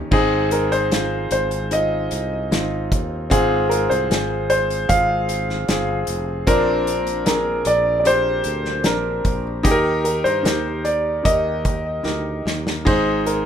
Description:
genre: pop ballad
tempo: 75 BPM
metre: 4/4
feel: straight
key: Ab lydian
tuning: A4 = 441 Hz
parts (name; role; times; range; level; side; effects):
- clear grand piano; accompaniment; 0.0-13.5 s; Ab2 to C5; -22 LUFS; equal; plate reverb
- sustaining fretless electric bass; bass; 0.0-13.5 s; F1 to G2; -27 LUFS; equal; none
- loose indie drum kit; drums; 0.1-13.5 s; crash cymbal, hi-hat, kick drum, snare drum; -23 LUFS; equal; none
- clear grand piano; melody; 0.5-13.5 s; Bb4 to F5; -21 LUFS; equal; plate reverb, digital delay
room: moderate studio reverb, RT60 0.6 s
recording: rough home demo mix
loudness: -17 LUFS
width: side -8 dB against mid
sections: 0.1-13.5 A section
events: drum fill 12.1-12.9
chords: 0.1 Ab; 3.3 Fm/Ab; 6.5 Bbadd9; 9.7 Eb; 12.9 Ab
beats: | 0.12 0.92 1.72 2.52 | 3.32 4.11 4.90 5.69 | 6.48 7.27 8.06 8.86 | 9.65 10.45 11.25 12.06 | 12.87

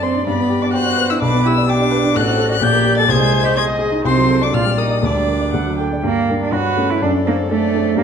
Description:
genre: quick classical-period movement for piano quartet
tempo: 126 BPM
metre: 2/4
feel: rubato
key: G minor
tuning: A4 = 440 Hz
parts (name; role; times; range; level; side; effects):
- dark violin; melody; 0.0-8.0 s; C#5 to A6; -21 LUFS; left 7 dB; none
- rich cello; second line; 0.0-8.0 s; A3 to A4; -20 LUFS; right 7 dB; none
- dark baby grand piano; accompaniment; 0.0-8.0 s; A1 to C6; -17 LUFS; left 2 dB; none
- warm viola; accompaniment; 0.0-8.0 s; G4 to G5; -23 LUFS; right 2 dB; none
room: wet recital hall reverb, RT60 1.7 s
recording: dark, warm production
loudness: -14 LUFS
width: side -7 dB against mid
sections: 0.0-6.0 A section; 6.0-8.0 B section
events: none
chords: 0.3 G; 1.2 G/B; 2.2 D7/A; 2.6 Gm/Bb; 3.1 Ab/C; 4.1 D7/C; 4.5 Gm/Bb; 5.0 Gm/D; 5.5 D; 6.0 Gm; 6.5 A7/G; 7.0 D7/F#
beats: | 0.27 0.75 | 1.23 1.70 | 2.16 2.63 | 3.10 3.57 | 4.05 4.53 | 5.03 5.54 | 6.05 6.53 | 7.02 7.50 | 7.98

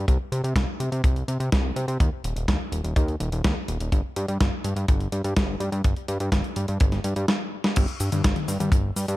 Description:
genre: italo disco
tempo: 125 BPM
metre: 4/4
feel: straight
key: unclear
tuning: A4 = 440 Hz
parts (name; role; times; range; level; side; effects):
- fat analog bass; bass; 0.0-9.2 s; Eb1 to C3; -26 LUFS; equal; none
- clean 12-bit digital drum machine; drums; 0.1-9.2 s; cabasa, crash cymbal, hi-hat, snare drum, toms; -28 LUFS; equal; gated reverb
- kick drum; drums; 0.1-8.8 s; none; -22 LUFS; equal; none
room: little or no reverb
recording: none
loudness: -22 LUFS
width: side -17 dB against mid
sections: 0.0-7.8 A section; 7.8-9.2 B section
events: drum fill 7.3-7.8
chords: none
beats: | 0.08 0.56 1.04 1.52 | 2.00 2.48 2.96 3.44 | 3.92 4.40 4.88 5.36 | 5.84 6.32 6.80 7.28 | 7.76 8.24 8.72

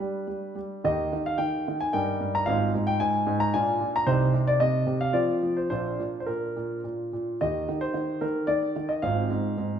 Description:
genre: classical-period piano sonatina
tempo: 110 BPM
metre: 3/4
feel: straight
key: Eb major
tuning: A4 = 438 Hz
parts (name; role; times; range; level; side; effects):
- warm concert grand piano; solo; 0.0-9.8 s; Ab1 to Bb5; -24 LUFS; equal; none
room: wet recital hall reverb, RT60 1.8 s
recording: minimal, uncompressed stereo recording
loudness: -24 LUFS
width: side -8 dB against mid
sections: 0.0-7.4 A section; 7.4-9.8 B section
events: none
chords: 0.0 G; 0.8 Eb; 1.9 Eb/G; 2.5 Fm7/Ab; 3.5 Bb; 4.1 Cm; 5.1 F5; 5.7 Bb; 7.4 Eb; 9.0 Fm/Ab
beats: 0.28 | 0.84 1.39 1.94 | 2.47 3.01 3.54 | 4.07 4.61 5.15 | 5.71 6.28 6.84 | 7.40 7.95 8.49 | 9.04 9.58

